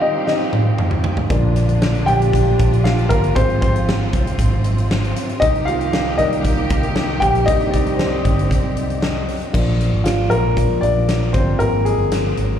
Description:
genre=piano-driven pop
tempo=116 BPM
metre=4/4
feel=straight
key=C minor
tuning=A4 = 440 Hz
part: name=warm upright piano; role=accompaniment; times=0.0-12.6 s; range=Eb3 to G5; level=-19 LUFS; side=left 1 dB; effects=slapback echo
part: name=warm studio string section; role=sustained chords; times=0.0-9.5 s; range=Ab2 to G4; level=-26 LUFS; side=right 1 dB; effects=none
part: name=huge arena drum kit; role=drums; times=0.3-12.5 s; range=crash cymbal, hi-hat, kick drum, snare drum, toms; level=-20 LUFS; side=equal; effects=none
part: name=vintage muted fingered electric bass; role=bass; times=1.3-12.6 s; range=G1 to C2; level=-19 LUFS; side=equal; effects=none
room=small room ambience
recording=live gig heard through the venue's PA, club reverb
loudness=-15 LUFS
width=side -9 dB against mid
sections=0.0-9.5 A section; 9.5-12.6 B section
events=upright piano solo 0.0-9.5, 9.5-12.6; drum fill 0.3-1.3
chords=0.0 Cm7; 1.3 Bb; 3.4 Fm/Ab; 5.4 Cm7; 9.5 Bb; 11.6 Fm

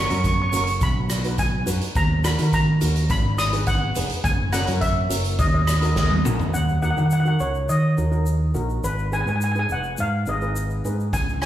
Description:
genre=calypso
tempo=105 BPM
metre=4/4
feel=straight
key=Eb minor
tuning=A4 = 438 Hz
part: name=steel pan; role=melody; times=0.0-11.5 s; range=Cb5 to Eb6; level=-26 LUFS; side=equal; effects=slapback echo
part: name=steel pan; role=accompaniment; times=0.0-11.5 s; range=Db4 to Db5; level=-31 LUFS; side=equal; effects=slapback echo
part: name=fingered electric bass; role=bass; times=0.0-11.5 s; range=F1 to Eb3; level=-22 LUFS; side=equal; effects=none
part: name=street-band drum kit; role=drums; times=0.1-6.5, 11.1-11.5 s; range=hi-hat, kick drum, rim click, snare drum, toms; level=-24 LUFS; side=equal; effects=none
part: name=egg shaker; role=percussion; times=0.1-11.5 s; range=none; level=-38 LUFS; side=left 5 dB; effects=none
room=light reverb, small room reverb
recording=studio reverb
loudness=-19 LUFS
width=side -12 dB against mid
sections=0.0-6.5 A section; 6.5-11.5 B section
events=drum fill 6.0-6.5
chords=0.0 Gb; 0.8 B; 2.0 Ebm; 3.1 Abm7; 4.2 Gb7; 5.4 Ebm; 8.8 Abm

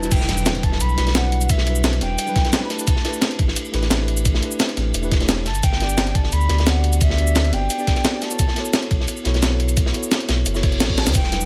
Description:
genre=liquid drum and bass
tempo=174 BPM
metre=4/4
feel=straight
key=E dorian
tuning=A4 = 440 Hz
part: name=mellow jazz flute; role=melody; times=0.0-3.4, 5.5-11.5 s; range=E5 to B5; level=-30 LUFS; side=equal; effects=none
part: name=mellow tine electric piano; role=accompaniment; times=0.0-11.5 s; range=F#3 to D5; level=-30 LUFS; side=equal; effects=digital delay
part: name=sub bass with octave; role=bass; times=0.0-11.5 s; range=E1 to E2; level=-23 LUFS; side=equal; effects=none
part: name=breakbeat sampler-style drum kit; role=drums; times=0.0-11.5 s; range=cabasa, crash cymbal, hi-hat, snare drum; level=-25 LUFS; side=equal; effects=high-pass filter on hats, high-pass filter on snare, high-pass filter on perc, high-pass filter on cymbals, high-pass filter on room
part: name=riser, impact and reverse cymbal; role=sound effects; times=0.0-1.5, 10.6-11.2 s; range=none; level=-32 LUFS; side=equal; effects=none
part: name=crunchy breakbeat drum kit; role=drums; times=0.1-11.4 s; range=ride cymbal, snare drum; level=-29 LUFS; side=equal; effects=high-pass filter on cymbals, high-pass filter on snare, high-pass filter on room
part: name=electronic kick drum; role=drums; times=0.1-11.2 s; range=none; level=-22 LUFS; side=equal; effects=none
room=digital ambience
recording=none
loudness=-19 LUFS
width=mono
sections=0.1-11.5 A section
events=drop 0.1-11.5; impact 0.1-1.5; reverse cymbal 10.6-11.2; drum fill 11.0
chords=0.1 Em9; 2.7 A9sus4; 5.5 Gmaj7; 8.4 B9sus4

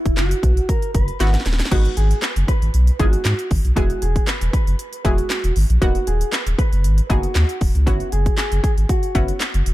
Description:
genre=dance-pop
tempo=117 BPM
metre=4/4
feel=straight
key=G# minor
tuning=A4 = 440 Hz
part: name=mellow electric guitar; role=melody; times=0.0-9.4 s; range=E4 to B4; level=-26 LUFS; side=right 1 dB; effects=digital delay
part: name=analog pluck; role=accompaniment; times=0.0-9.5 s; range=G#3 to G#4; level=-28 LUFS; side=left 2 dB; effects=chorus, sidechain pumping
part: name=warm sub bass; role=bass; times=0.1-9.7 s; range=D#1 to G#2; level=-18 LUFS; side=equal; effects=sidechain pumping
part: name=house drum kit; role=drums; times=0.1-9.7 s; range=crash cymbal, handclaps, hi-hat, kick drum, snare drum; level=-20 LUFS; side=equal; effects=none
room=little or no reverb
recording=dark, warm production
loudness=-16 LUFS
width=side -16 dB against mid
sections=0.0-1.7 A section; 1.7-9.7 B section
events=drum fill 1.2-1.7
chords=0.0 F#7sus4; 1.7 G#m7; 3.8 E; 5.8 Bmaj7/D#; 7.9 F#7sus4

